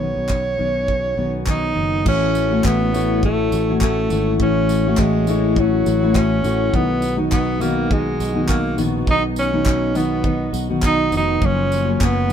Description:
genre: acoustic pop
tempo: 102 BPM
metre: 4/4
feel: swing 55% on 16ths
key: unclear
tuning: A4 = 440 Hz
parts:
  - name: bright alto saxophone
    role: melody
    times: 0.0-12.3 s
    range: F#3 to Db5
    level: -21 LUFS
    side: right 2 dB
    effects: none
  - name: fingerpicked steel-string acoustic guitar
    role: accompaniment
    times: 0.0-12.3 s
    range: Cb3 to C#5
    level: -21 LUFS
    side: left 3 dB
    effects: none
  - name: fingered electric bass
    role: bass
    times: 0.0-12.3 s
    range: F1 to Cb2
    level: -22 LUFS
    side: equal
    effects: none
  - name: modern studio drum kit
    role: drums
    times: 0.3-12.3 s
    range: crash cymbal, handclaps, kick drum, tambourine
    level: -23 LUFS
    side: right 1 dB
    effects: none
  - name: twelve-string electric guitar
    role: arpeggios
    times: 2.1-12.3 s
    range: Eb3 to F#4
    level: -28 LUFS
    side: right 4 dB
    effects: none
room: light reverb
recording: minimal, uncompressed stereo recording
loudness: -16 LUFS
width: side -8 dB against mid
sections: 0.0-2.1 A section; 2.1-12.3 B section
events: none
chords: 0.0 Cbadd9; 2.1 A6; 6.7 Cb; 11.4 Gbmaj7

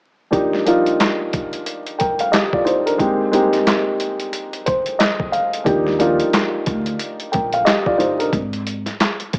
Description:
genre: hip hop, boom-bap hip-hop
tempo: 90 BPM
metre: 4/4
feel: swing 59% on 16ths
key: Eb major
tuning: A4 = 440 Hz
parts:
  - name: dark upright piano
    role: accompaniment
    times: 0.3-8.3 s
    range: F3 to G5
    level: -17 LUFS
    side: equal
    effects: cassette tape, high-pass filter, low-pass filter
  - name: boom bap sampler-style drum kit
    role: drums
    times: 0.3-9.4 s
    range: handclaps, hi-hat, kick drum, snare drum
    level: -20 LUFS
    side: equal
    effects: cassette tape
  - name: upright bass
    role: bass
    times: 5.7-9.4 s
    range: G1 to Eb2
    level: -26 LUFS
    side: equal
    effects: none
room: light reverb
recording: home recording on cassette, vinyl crackle, small speaker sound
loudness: -16 LUFS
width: side -35 dB against mid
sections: 0.3-9.4 A section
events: upright piano fill 4.3-5.7; break 8.3-9.4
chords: 0.3 Ebmaj7; 3.0 Abmaj9; 5.7 Ebmaj7; 8.3 N.C.

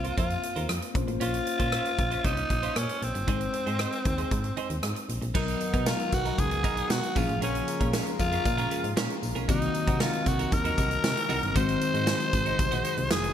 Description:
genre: 1980s-style pop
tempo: 116 BPM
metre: 4/4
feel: straight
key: Bb minor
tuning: A4 = 441 Hz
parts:
  - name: breathy tenor saxophone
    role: melody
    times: 0.0-13.3 s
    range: C4 to C5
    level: -30 LUFS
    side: left 1 dB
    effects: none
  - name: mellow tine electric piano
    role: accompaniment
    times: 0.0-13.3 s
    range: Eb3 to C5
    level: -34 LUFS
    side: left 4 dB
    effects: wide subtle chorus
  - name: twelve-string electric guitar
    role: riff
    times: 0.0-13.3 s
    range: B3 to C5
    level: -36 LUFS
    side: right 7 dB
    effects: lush chorus
  - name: solid FM bass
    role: bass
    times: 0.0-13.3 s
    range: F1 to C3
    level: -32 LUFS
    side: equal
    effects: none
  - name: big rock drum kit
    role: drums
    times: 0.0-13.3 s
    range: crash cymbal, hi-hat, kick drum, rim click, snare drum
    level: -30 LUFS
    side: equal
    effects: gated reverb
  - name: lush unison pad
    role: sustained chords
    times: 5.3-13.3 s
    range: C3 to A#4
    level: -37 LUFS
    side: right 1 dB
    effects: chorus
  - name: tambourine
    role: percussion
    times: 5.3-13.2 s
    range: none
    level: -44 LUFS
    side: left 9 dB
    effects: none
room: light reverb, small room ambience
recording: bright 1980s-style digital production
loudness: -25 LUFS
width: side -9 dB against mid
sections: 0.0-5.3 A section; 5.3-13.3 B section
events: none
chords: 0.0 Fsus4; 1.0 Bbmadd9; 3.3 Ab; 5.3 Bmaj7; 7.2 Bbm7; 9.5 Cm7b5; 11.6 Ab7

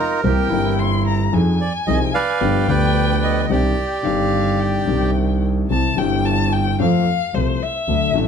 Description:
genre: tango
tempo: 110 BPM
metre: 4/4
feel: rubato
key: C minor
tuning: A4 = 440 Hz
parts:
  - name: bandoneon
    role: melody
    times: 0.0-5.1 s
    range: Eb4 to G5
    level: -21 LUFS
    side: right 4 dB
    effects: none
  - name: silver concert flute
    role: second line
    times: 0.0-1.4 s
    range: E4 to Bb4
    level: -29 LUFS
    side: right 6 dB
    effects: none
  - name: warm violin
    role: second line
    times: 0.0-8.3 s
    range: C5 to C6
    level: -24 LUFS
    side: left 6 dB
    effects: none
  - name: dark concert grand piano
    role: accompaniment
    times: 0.2-8.3 s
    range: G1 to A4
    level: -21 LUFS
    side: left 7 dB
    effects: none
  - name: rich double bass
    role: bass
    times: 0.2-8.3 s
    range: G1 to F2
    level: -20 LUFS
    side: right 4 dB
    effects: none
room: light reverb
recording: none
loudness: -16 LUFS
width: side -7 dB against mid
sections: 0.0-5.7 A section; 5.7-8.3 B section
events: violin solo 5.7-8.3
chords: 0.2 C7; 1.3 Fm7; 2.4 G7; 3.5 Cmadd9; 5.7 C; 6.8 F

